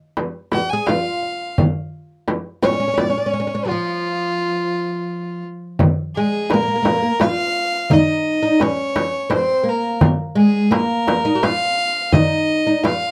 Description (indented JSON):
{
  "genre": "Arabic maqam ensemble",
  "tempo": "85 BPM",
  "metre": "3/4",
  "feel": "straight",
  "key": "F maqam bayati",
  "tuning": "A4 = 441 Hz",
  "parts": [
    { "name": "darbuka", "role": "percussion", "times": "0.2-13.0 s", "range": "none", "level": "-23 LUFS", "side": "equal", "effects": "none" },
    { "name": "frame drum", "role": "percussion", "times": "0.2-13.0 s", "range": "none", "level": "-23 LUFS", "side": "equal", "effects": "none" },
    { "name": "dark violin", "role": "melody", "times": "0.5-13.1 s", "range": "F4 to Ab5", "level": "-23 LUFS", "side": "equal", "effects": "none" },
    { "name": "oud", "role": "second line", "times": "0.5-13.1 s", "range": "F3 to Ab4", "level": "-23 LUFS", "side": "equal", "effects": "none" }
  ],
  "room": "wet booth ambience, RT60 0.2 s",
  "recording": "dark, warm production",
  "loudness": "-19 LUFS",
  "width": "mono",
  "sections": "0.0-5.8 A section; 5.8-13.1 B section",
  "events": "break 3.7-5.8",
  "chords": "none"
}